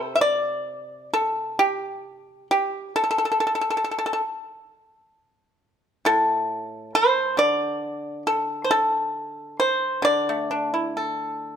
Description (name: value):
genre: chinese traditional, Chinese solo plucked strings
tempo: 67 BPM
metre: 4/4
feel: rubato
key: D shang mode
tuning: A4 = 440 Hz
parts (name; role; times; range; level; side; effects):
- pipa; solo; 0.0-11.6 s; A2 to E5; -21 LUFS; equal; none
room: light reverb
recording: close, detailed microphones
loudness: -21 LUFS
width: side -8 dB against mid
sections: 0.0-11.6 A section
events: none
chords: none